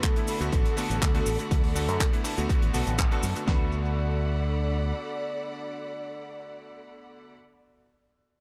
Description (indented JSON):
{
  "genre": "nu-disco, nu disco",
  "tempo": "122 BPM",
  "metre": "4/4",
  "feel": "straight",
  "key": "D major",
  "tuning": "A4 = 440 Hz",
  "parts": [
    { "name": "soft octave-layered synth lead", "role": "melody", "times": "0.0-7.3 s", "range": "A4 to D5", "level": "-38 LUFS", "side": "equal", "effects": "chorus, phaser, tape echo" },
    { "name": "bright electric grand piano", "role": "accompaniment", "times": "0.0-7.4 s", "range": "D3 to F#4", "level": "-38 LUFS", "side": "equal", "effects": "sidechain pumping, tape echo" },
    { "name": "clear studio string section", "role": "sustained chords", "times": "0.0-7.3 s", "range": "A4 to B5", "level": "-42 LUFS", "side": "equal", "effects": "sidechain pumping" },
    { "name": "semi-hollow electric guitar", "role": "riff", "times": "0.0-7.4 s", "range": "B3 to B4", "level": "-40 LUFS", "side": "equal", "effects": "ensemble chorus, tape echo" },
    { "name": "damped 70s drum kit", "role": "drums", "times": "0.0-3.5 s", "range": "handclaps, hi-hat", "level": "-37 LUFS", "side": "equal", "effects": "tape echo" },
    { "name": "pop drum kit", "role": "drums", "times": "0.0-3.6 s", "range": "kick drum, snare drum", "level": "-28 LUFS", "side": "equal", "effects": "none" },
    { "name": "cabasa", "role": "percussion", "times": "0.0-3.5 s", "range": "none", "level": "-42 LUFS", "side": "equal", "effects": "tape echo" },
    { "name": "fingered electric bass with an envelope filter", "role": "bass", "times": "0.4-4.9 s", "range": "A1 to F#2", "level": "-30 LUFS", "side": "equal", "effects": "sidechain pumping" }
  ],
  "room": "studio reverb",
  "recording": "echo-heavy mix",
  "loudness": "-27 LUFS",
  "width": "mono",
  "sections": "0.0-3.5 A section; 3.5-7.4 B section",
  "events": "drop 0.0-3.5; band accent 3.0",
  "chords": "0.0 D6",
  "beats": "0.03 0.53 1.02 | 1.51 2.00 2.49 2.98 | 3.48 3.97 4.46 4.95 | 5.44 5.93 6.43 6.92"
}